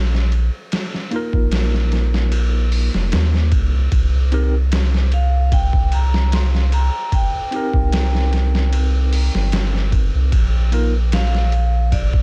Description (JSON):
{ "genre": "trip hop", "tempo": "75 BPM", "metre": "4/4", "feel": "swing 53% on 16ths", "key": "C minor", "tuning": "A4 = 442 Hz", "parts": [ { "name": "soft dub sub bass", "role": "bass", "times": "0.0-12.2 s", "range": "F1 to Eb2", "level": "-19 LUFS", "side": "equal", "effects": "tube saturation" }, { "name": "trip hop sampler-style drum kit", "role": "drums", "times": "0.1-12.2 s", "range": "hi-hat, kick drum, ride cymbal, snare drum", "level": "-24 LUFS", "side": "equal", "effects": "none" }, { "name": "tine electric piano", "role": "accompaniment", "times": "1.1-10.9 s", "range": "Bb3 to Bb4", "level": "-29 LUFS", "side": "equal", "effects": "tremolo, tape echo" }, { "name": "vibraphone with hard mallets", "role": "melody", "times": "5.1-12.2 s", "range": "D5 to C6", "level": "-30 LUFS", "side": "equal", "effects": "vintage 12-bit sampler grit, tape echo" } ], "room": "little or no reverb", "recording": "none", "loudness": "-18 LUFS", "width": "mono", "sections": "0.0-12.2 A section", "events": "none", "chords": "0.0 Bbsus4; 3.9 Cm7; 10.3 Bb5" }